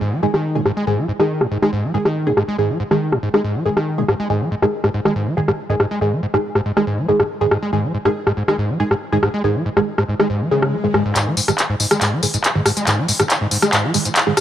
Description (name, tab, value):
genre	driving peak-time techno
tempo	140 BPM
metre	4/4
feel	straight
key	unclear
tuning	A4 = 440 Hz
part	screaming distorted acid line	riff	0.0-14.4 s	G#2 to G#3	-21 LUFS	equal	distortion, analog chorus, analog delay
part	downlifter, swell and riser	sound effects	0.1-0.9, 10.5-14.4 s	none	-33 LUFS	left 2 dB	none
part	filtered dub chord stab	stabs	0.2-14.3 s	D#3 to G#4	-21 LUFS	right 1 dB	phaser, analog chorus, analog delay
part	techno drum kit	drums	0.3-14.4 s	handclaps, hi-hat, rim click, tambourine	-18 LUFS	equal	overdrive, high-pass filter on snare, low-pass filter on snare, high-pass filter on hats, low-pass filter on hats, high-pass filter on cymbals, low-pass filter on cymbals, high-pass filter on perc, low-pass filter on perc
room	light reverb, digital ambience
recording	dry, gritty hardware recording, high-pass filter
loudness	-16 LUFS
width	side -11 dB against mid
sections	0.0-11.2 A section; 11.2-14.4 B section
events	swell 10.5-11.2; build-up 11.2-14.4; drum fill 11.2-14.4; filter sweep on acid bass 11.2-14.4; filter sweep on synth stab 11.2-14.4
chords	0.0 G#5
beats	0.01 0.44 | 0.87 1.30 1.73 2.16 | 2.58 3.01 3.44 3.87 | 4.30 4.73 5.16 5.58 | 6.01 6.44 6.87 7.30 | 7.73 8.16 8.59 9.01 | 9.44 9.87 10.30 10.73 | 11.16 11.59 12.01 12.44 | 12.87 13.30 13.73 14.16